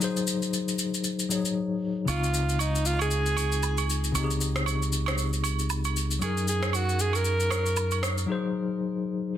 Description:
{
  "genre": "amapiano",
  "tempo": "116 BPM",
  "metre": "4/4",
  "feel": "swing 58% on 16ths",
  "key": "unclear",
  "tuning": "A4 = 440 Hz",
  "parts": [
    { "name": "tine electric piano", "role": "accompaniment", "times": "0.0-9.4 s", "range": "Db3 to Db5", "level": "-30 LUFS", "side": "left 4 dB", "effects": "fast tremolo" },
    { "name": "electronic shaker and rim click", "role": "drums", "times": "0.0-8.3 s", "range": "none", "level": "-32 LUFS", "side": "left 2 dB", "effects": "overdrive" },
    { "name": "breathy alto saxophone", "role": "melody", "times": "2.1-8.0 s", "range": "Eb4 to Bb4", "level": "-30 LUFS", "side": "right 2 dB", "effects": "ping-pong delay" },
    { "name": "fingered electric bass", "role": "bass", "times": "2.1-8.2 s", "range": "Db2 to Gb2", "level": "-28 LUFS", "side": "right 1 dB", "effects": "none" },
    { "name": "agogo bells and woodblock", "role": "percussion", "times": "2.1-8.0 s", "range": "none", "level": "-35 LUFS", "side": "right 12 dB", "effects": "none" },
    { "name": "reverse cymbal", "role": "sound effects", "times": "9.3-9.4 s", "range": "none", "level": "-52 LUFS", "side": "right 8 dB", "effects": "none" }
  ],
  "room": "light reverb, digital ambience",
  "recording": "dense, heavily limited modern master",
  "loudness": "-25 LUFS",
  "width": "side -10 dB against mid",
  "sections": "0.0-9.4 A section",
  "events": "drums muted 1.6-2.1; break 8.3-9.4",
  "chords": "0.0 Gb69; 2.1 Dbmaj9; 6.2 Gb69"
}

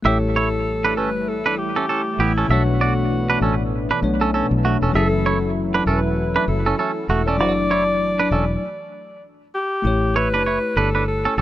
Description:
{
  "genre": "afrobeats",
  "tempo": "98 BPM",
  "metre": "4/4",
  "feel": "swing 58% on 16ths",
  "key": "unclear",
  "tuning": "A4 = 438 Hz",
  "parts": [
    { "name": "bell-like tine electric piano", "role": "accompaniment", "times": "0.0-11.4 s", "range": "B2 to D5", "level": "-24 LUFS", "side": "left 3 dB", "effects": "none" },
    { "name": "warm analog pad", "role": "sustained chords", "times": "0.0-8.6 s", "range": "E3 to E4", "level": "-28 LUFS", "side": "equal", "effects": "chorus" },
    { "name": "fingered electric bass", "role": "bass", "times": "0.0-11.4 s", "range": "E1 to B1", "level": "-23 LUFS", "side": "equal", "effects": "none" },
    { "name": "breathy alto saxophone", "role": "melody", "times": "0.1-11.4 s", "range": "E4 to D5", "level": "-24 LUFS", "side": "left 1 dB", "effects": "tape echo" },
    { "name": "twangy electric guitar", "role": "riff", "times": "0.1-11.4 s", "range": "A3 to E5", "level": "-21 LUFS", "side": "right 4 dB", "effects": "tape echo" }
  ],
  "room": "little or no reverb",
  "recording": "rough home demo mix",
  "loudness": "-17 LUFS",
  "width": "side -13 dB against mid",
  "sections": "0.0-9.8 A section; 9.8-11.4 B section",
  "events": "stop 8.6-9.8",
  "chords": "0.0 A7; 2.5 Bm9; 9.8 A7"
}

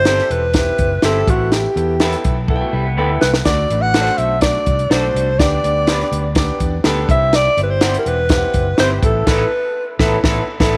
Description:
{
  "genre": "uptempo 1960s-style soul",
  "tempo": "124 BPM",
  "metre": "4/4",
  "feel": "straight",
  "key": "unclear",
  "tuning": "A4 = 440 Hz",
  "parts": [
    { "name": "breathy alto saxophone", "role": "melody", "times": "0.0-10.0 s", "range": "F#4 to F#5", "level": "-20 LUFS", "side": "equal", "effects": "none" },
    { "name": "fingered electric bass", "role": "bass", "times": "0.0-10.8 s", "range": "E1 to E2", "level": "-23 LUFS", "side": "equal", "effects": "none" },
    { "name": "clear grand piano", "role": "accompaniment", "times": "0.1-10.8 s", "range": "A3 to G5", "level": "-26 LUFS", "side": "equal", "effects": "none" },
    { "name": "electric guitar through a small old amp", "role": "stabs", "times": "0.1-10.8 s", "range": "A3 to C5", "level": "-28 LUFS", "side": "equal", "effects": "spring reverb, tape echo" },
    { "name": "compact cocktail drum kit", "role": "drums", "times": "0.1-10.8 s", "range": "crash cymbal, hi-hat, kick drum, snare drum", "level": "-20 LUFS", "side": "equal", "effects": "none" },
    { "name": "electric guitar through a small old amp", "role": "riff", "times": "2.5-3.4 s", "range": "D3 to A4", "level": "-30 LUFS", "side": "equal", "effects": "lush chorus" }
  ],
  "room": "light reverb, studio ambience",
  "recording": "none",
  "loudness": "-16 LUFS",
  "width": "mono",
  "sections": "0.0-10.8 A section",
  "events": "drum fill 2.5-3.5; band accent 9.3-10.8",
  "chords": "0.0 C; 1.3 Asus2; 3.5 D; 5.4 G/D; 7.1 C; 9.0 Asus2"
}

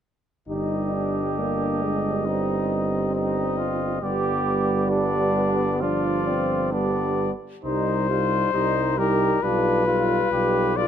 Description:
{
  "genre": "classical, brass quintet",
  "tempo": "67 BPM",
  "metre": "4/4",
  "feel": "straight",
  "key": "C minor",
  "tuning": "A4 = 439 Hz",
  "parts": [
    { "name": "warm trumpet", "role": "melody", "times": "0.5-10.9 s", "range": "Bb4 to Eb5", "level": "-27 LUFS", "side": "left 8 dB", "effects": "none" },
    { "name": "clear flugelhorn", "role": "second line", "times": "0.5-10.9 s", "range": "D4 to G4", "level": "-29 LUFS", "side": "right 7 dB", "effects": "none" },
    { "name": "clear French horn", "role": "accompaniment", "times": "0.5-10.9 s", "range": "B3 to F4", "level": "-28 LUFS", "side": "left 4 dB", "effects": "none" },
    { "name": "warm euphonium", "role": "accompaniment", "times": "0.5-10.9 s", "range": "F3 to Bb3", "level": "-28 LUFS", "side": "right 4 dB", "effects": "none" },
    { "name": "clear bass trombone", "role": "bass", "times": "0.5-10.9 s", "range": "G1 to C2", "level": "-27 LUFS", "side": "right 3 dB", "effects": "none" }
  ],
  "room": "light reverb",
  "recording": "close, detailed microphones",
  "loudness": "-21 LUFS",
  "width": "side -9 dB against mid",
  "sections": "0.5-7.6 A section; 7.6-10.9 B section",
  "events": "none",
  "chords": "0.5 Cm/G; 4.0 G7; 7.6 Cm; 9.4 G7/B"
}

